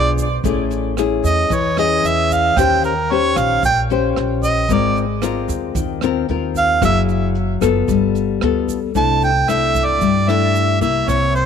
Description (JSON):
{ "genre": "bossa nova", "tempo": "113 BPM", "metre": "4/4", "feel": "straight", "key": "unclear", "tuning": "A4 = 440 Hz", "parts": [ { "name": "warm harmonica", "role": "melody", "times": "0.0-11.5 s", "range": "Bb4 to A5", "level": "-18 LUFS", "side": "right 3 dB", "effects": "tape echo" }, { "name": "nylon-string guitar", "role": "accompaniment", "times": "0.0-11.5 s", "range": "Bb2 to C5", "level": "-19 LUFS", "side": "left 11 dB", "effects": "none" }, { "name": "upright bass", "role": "bass", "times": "0.0-11.5 s", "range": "Gb1 to G2", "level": "-22 LUFS", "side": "right 2 dB", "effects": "none" }, { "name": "jazz brush drum kit", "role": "drums", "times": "0.2-11.5 s", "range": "hi-hat, kick drum, rim click", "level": "-27 LUFS", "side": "right 6 dB", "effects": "none" }, { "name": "egg shaker", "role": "percussion", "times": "0.2-11.5 s", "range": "none", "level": "-35 LUFS", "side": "right 19 dB", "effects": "none" } ], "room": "light reverb, small room ambience", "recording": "1960s-style stereo with parts hard left and right", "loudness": "-15 LUFS", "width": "side -7 dB against mid", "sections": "0.0-9.0 A section; 9.0-11.5 B section", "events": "harmonica solo 0.0-9.0", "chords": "0.4 Amaj7; 2.6 Eb6; 4.7 Ab69; 6.8 Gb9; 7.9 G9; 9.0 C69" }